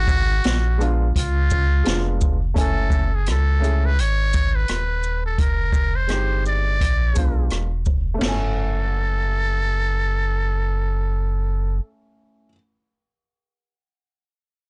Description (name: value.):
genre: hip hop, jazz-hop.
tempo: 85 BPM.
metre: 4/4.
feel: swing 57% on 16ths.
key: unclear.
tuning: A4 = 440 Hz.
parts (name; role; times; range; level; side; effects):
trumpet with metal mute; melody; 0.0-11.8 s; E#4 to D5; -28 LUFS; equal; none.
sub bass with octave; bass; 0.0-11.8 s; D#1 to C#2; -24 LUFS; equal; none.
open jazz drum kit; drums; 0.1-8.4 s; crash cymbal, hi-hat, kick drum, rim click, shaker, snare drum, toms; -25 LUFS; equal; none.
dark upright piano; accompaniment; 0.8-12.5 s; G#3 to G#5; -32 LUFS; equal; none.
room: little or no reverb.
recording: blown-out, overdriven recording, overdrive, nothing above 10.6 kHz.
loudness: -21 LUFS.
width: mono.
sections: 0.0-2.6 A section; 2.6-8.2 B section; 8.2-11.0 C section.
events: none.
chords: 0.0 G#m9; 1.2 C#7b9; 2.6 F#m9; 5.4 Fm7; 6.8 A#7b9; 8.2 F#m9.